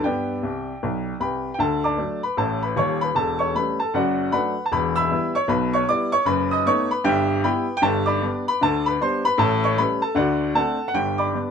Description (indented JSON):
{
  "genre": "jazz, stride piano",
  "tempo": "154 BPM",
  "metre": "4/4",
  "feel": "swing 62% on 8ths",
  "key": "D major, G major from 7.8 s",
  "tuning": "A4 = 441 Hz",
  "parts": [
    { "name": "clear upright piano", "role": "solo", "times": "0.0-11.5 s", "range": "Eb1 to E6", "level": "-20 LUFS", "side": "left 1 dB", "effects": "none" }
  ],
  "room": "little or no reverb",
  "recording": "close, detailed microphones",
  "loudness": "-20 LUFS",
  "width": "side -7 dB against mid",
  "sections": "0.0-1.6 A section; 1.6-11.5 B section",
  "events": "upright piano fill 0.4-1.6",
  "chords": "0.0 G; 1.6 D; 3.2 A7/E; 3.9 D/F#; 4.7 Em; 6.3 B7/F#; 7.1 Em/G; 7.8 G; 9.4 A7; 10.2 D7; 10.9 G"
}